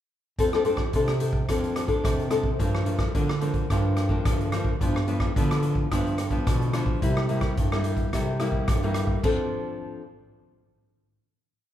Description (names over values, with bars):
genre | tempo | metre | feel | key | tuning
samba and choro | 109 BPM | 4/4 | straight | F major | A4 = 436 Hz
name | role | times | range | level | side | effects
nylon-string guitar | accompaniment | 0.4-10.0 s | G2 to A4 | -27 LUFS | left 2 dB | none
mellow bass clarinet | bass | 0.4-9.5 s | F2 to D3 | -28 LUFS | right 1 dB | none
swinging big-band drum kit | drums | 0.4-9.4 s | crash cymbal, hi-hat, kick drum, rim click | -27 LUFS | equal | none
room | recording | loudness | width
light reverb | band playing live in one room | -22 LUFS | side -11 dB against mid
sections
0.4-9.2 groove; 9.2-11.4 final chord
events
none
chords
0.4 F6; 2.6 Gm7; 4.8 G7; 7.0 C7; 9.2 F6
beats
| 0.39 0.94 1.49 2.05 | 2.60 3.15 3.70 4.25 | 4.81 5.36 5.91 6.47 | 7.02 7.57 8.12 8.68 | 9.23 9.78